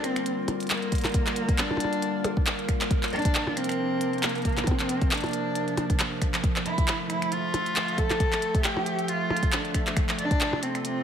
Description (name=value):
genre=IDM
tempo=136 BPM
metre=4/4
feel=swing 56% on 16ths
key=G dorian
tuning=A4 = 441 Hz
part: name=dark cello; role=melody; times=0.0-11.0 s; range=Bb3 to A4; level=-29 LUFS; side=equal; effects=ping-pong delay
part: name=warbly tape-like pad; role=sustained chords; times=0.0-11.0 s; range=C3 to E5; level=-31 LUFS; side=right 1 dB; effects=chorus, built-in reverb
part: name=glitchy drum kit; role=drums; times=0.0-10.9 s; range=finger snaps, handclaps, hi-hat, percussion blips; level=-29 LUFS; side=equal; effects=none
part: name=electronic kick drum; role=drums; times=0.9-10.4 s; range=none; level=-26 LUFS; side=equal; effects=none
room=light reverb, digital ambience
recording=none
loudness=-24 LUFS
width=side -8 dB against mid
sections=0.0-11.0 A section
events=none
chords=0.0 Gm7; 2.9 Bbadd9; 6.4 Dmadd9; 10.0 F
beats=0.26 0.70 | 1.14 1.58 2.02 2.46 | 2.91 3.35 3.79 4.23 | 4.67 5.11 5.55 6.00 | 6.44 6.88 7.32 7.76 | 8.20 8.64 9.08 9.52 | 9.96 10.41 10.85